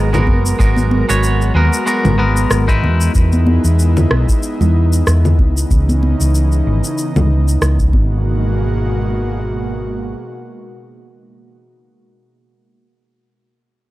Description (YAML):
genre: sunset chillout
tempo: 94 BPM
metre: 4/4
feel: swing 56% on 16ths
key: G# minor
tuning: A4 = 440 Hz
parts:
  - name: clean electric guitar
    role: accompaniment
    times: 0.0-3.1 s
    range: G#3 to C#5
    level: -18 LUFS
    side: moving between left 4 dB and right 4 dB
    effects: auto-pan, tape echo
  - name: airy breathy pad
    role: sustained chords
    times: 0.0-11.6 s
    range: B2 to A#4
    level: -21 LUFS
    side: equal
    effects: chorus, vintage 12-bit sampler grit
  - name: hollow-body short-scale fingered electric bass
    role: bass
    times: 0.0-10.1 s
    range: F#1 to E2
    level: -14 LUFS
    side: equal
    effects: none
  - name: electronic congas, shaker and rim click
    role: drums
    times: 0.1-7.9 s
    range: none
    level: -20 LUFS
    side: left 1 dB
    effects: small room ambience
  - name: electronic kick drum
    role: drums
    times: 0.3-8.1 s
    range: none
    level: -14 LUFS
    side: equal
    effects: small room ambience
  - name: congas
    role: percussion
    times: 0.3-8.1 s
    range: none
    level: -22 LUFS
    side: right 1 dB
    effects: none
room: little or no reverb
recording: dry, gritty hardware recording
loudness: -12 LUFS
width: side -17 dB against mid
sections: 0.0-8.3 A section; 8.3-10.8 B section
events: none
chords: 0.0 G#m9; 2.8 Emaj7; 5.4 C#m9; 7.9 G#m9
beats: | 0.59 1.23 1.87 2.51 | 3.15 3.79 4.42 5.06 | 5.70 6.34 6.98 7.62 | 8.26 8.89 9.53 10.17